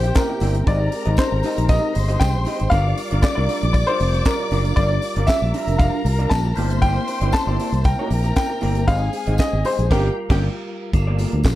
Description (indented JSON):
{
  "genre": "disco",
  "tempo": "117 BPM",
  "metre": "4/4",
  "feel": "straight",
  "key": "G dorian",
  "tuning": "A4 = 440 Hz",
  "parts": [
    { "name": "clear concert grand piano", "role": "melody", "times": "0.0-10.6 s", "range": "Bb4 to A5", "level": "-24 LUFS", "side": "left 1 dB", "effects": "none" },
    { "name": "dark studio string section", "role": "second line", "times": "0.0-10.5 s", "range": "G4 to D6", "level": "-28 LUFS", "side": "left 1 dB", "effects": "none" },
    { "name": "electric guitar through a small old amp", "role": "accompaniment", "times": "0.0-11.5 s", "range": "Bb3 to Eb5", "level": "-28 LUFS", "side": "right 1 dB", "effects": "lush chorus" },
    { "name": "percussive tonewheel organ", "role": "sustained chords", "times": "0.0-11.6 s", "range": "G3 to Bb4", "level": "-31 LUFS", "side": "equal", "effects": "overdrive, chorus vibrato, fast rotary speaker" },
    { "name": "fingered electric bass", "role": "bass", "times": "0.0-11.6 s", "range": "F1 to D2", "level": "-20 LUFS", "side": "equal", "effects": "none" },
    { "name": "tight funk drum kit", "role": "drums", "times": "0.0-11.6 s", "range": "crash cymbal, handclaps, hi-hat, kick drum, snare drum", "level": "-21 LUFS", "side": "equal", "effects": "none" },
    { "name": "tambourine", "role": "percussion", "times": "0.0-11.6 s", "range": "none", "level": "-41 LUFS", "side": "left 2 dB", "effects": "none" }
  ],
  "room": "light reverb, small room reverb",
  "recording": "dark, warm production",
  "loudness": "-17 LUFS",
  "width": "side -15 dB against mid",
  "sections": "0.0-10.9 A section",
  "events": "band accent 9.9-10.9",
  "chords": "0.0 C9; 0.7 Abmaj7; 2.7 Gm7; 6.6 C9/G; 8.9 Abmaj7; 9.9 Gm7; 10.9 Gm9",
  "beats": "0.16 | 0.67 1.18 1.70 2.21 | 2.72 3.23 3.75 4.26 | 4.77 5.29 5.80 6.31 | 6.82 7.34 7.85 8.36 | 8.88 9.39 9.90 10.42 | 10.93 11.45"
}